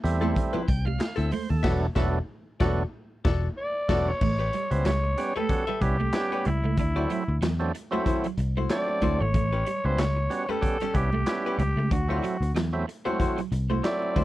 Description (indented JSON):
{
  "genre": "funk",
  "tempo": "94 BPM",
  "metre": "4/4",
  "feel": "swing 56% on 16ths",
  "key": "A mixolydian",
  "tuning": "A4 = 440 Hz",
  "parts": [
    { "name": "overdriven tonewheel organ", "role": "stabs", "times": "0.0-14.2 s", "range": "E3 to G5", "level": "-30 LUFS", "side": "right 4 dB", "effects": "none" },
    { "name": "vintage muted picked electric bass", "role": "bass", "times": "0.0-14.2 s", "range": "E1 to E2", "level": "-26 LUFS", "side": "equal", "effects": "none" },
    { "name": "congas", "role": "percussion", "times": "0.0-14.2 s", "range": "none", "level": "-36 LUFS", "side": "right 4 dB", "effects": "none" },
    { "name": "raw garage drum kit", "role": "drums", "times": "0.1-14.2 s", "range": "crash cymbal, handclaps, hi-hat, kick drum, snare drum", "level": "-29 LUFS", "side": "left 1 dB", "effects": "none" },
    { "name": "archtop guitar, miked and amplified", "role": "accompaniment", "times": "0.2-14.2 s", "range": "C4 to E5", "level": "-32 LUFS", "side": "left 6 dB", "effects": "none" },
    { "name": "electric guitar at the edge of break-up", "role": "riff", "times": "0.2-14.2 s", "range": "F3 to D4", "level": "-34 LUFS", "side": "right 7 dB", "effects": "ensemble chorus" },
    { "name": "growling alto saxophone", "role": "melody", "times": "3.6-14.2 s", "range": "E4 to D5", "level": "-29 LUFS", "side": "equal", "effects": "none" }
  ],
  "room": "little or no reverb",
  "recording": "dry, close 1970s-style studio recording",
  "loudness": "-24 LUFS",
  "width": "side -16 dB against mid",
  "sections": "0.0-4.2 A section; 4.2-14.2 B section",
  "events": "band accent 1.6-4.2",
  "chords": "0.0 Fmaj7; 1.6 E9sus4; 4.2 A9; 6.8 D9; 9.3 A9; 11.9 D9"
}